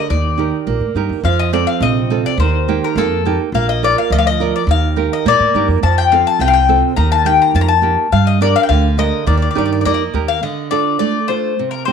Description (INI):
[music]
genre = greek folk, Greek bouzouki band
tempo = 104 BPM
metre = 2/4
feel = straight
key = unclear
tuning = A4 = 439 Hz
[part]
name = Greek bouzouki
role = melody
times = 0.0-11.9 s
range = A4 to Bb5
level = -16 LUFS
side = left 10 dB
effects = none
[part]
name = nylon-string guitar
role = accompaniment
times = 0.0-11.9 s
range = C3 to D5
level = -18 LUFS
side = right 13 dB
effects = none
[part]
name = upright bass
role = bass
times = 0.1-10.4 s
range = Bb1 to Bb2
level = -17 LUFS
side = right 1 dB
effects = none
[sound]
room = light reverb, studio ambience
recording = 1960s-style stereo with parts hard left and right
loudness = -12 LUFS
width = side -6 dB against mid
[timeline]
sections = 0.0-1.2 A section; 1.2-10.4 B section; 10.4-11.9 C section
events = none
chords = 0.1 Eb; 1.2 F; 2.4 Eb; 3.5 Bb; 4.7 Eb; 5.8 F; 7.0 Eb; 8.1 Gm; 9.3 Eb; 10.4 Dm